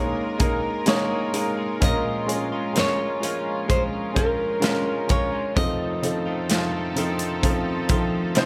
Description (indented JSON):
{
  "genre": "pop ballad",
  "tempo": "64 BPM",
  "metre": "4/4",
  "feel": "straight",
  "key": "Bb minor",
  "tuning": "A4 = 440 Hz",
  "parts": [
    { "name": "nylon-string guitar", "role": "melody", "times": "0.0-6.5 s", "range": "Bb4 to Eb5", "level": "-30 LUFS", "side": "equal", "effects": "delay" },
    { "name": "dark upright piano", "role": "accompaniment", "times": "0.0-8.5 s", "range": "F1 to Db5", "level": "-28 LUFS", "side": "equal", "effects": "none" },
    { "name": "warm studio string section", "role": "sustained chords", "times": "0.0-8.5 s", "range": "F3 to Bb4", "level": "-34 LUFS", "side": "equal", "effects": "none" },
    { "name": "direct-recorded clean electric guitar", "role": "arpeggios", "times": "0.0-8.5 s", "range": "F2 to Ab4", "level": "-35 LUFS", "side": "equal", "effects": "none" },
    { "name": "modern studio drum kit", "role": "drums", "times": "0.4-8.5 s", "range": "hi-hat, kick drum, snare drum", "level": "-27 LUFS", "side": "equal", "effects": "none" }
  ],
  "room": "light reverb, small room ambience",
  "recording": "none",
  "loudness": "-24 LUFS",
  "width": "mono",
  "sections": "0.0-8.5 A section",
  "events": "none",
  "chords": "0.0 Absus2; 1.8 Bbm7; 5.6 F7"
}